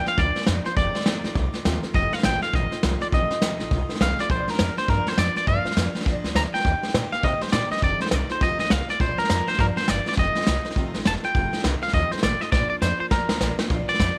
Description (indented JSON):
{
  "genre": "rockabilly",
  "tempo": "204 BPM",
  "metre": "4/4",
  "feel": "swing 61% on 8ths",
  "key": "Bb major",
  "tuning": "A4 = 441 Hz",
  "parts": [
    { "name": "twangy electric guitar", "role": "melody", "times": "0.0-14.2 s", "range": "Bb4 to Bb5", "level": "-28 LUFS", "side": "equal", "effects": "tape echo" },
    { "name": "picked steel-string acoustic guitar", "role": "accompaniment", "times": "0.0-14.2 s", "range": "F2 to G4", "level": "-34 LUFS", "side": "equal", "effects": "none" },
    { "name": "upright bass", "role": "bass", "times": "0.0-14.1 s", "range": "F1 to C3", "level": "-30 LUFS", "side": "equal", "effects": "none" },
    { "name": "soft brush drum kit", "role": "drums", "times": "0.1-14.1 s", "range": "hi-hat, kick drum, snare drum", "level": "-27 LUFS", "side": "equal", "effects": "none" }
  ],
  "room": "light reverb, studio reverb",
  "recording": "none",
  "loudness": "-23 LUFS",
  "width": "mono",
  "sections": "0.0-4.3 A section; 4.3-13.7 B section",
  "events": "drum fill 12.5-13.7",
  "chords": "0.0 Bb; 0.8 F7; 4.3 Bb; 6.7 Eb; 7.8 F7; 9.0 Bb; 10.2 F7; 12.5 Bb"
}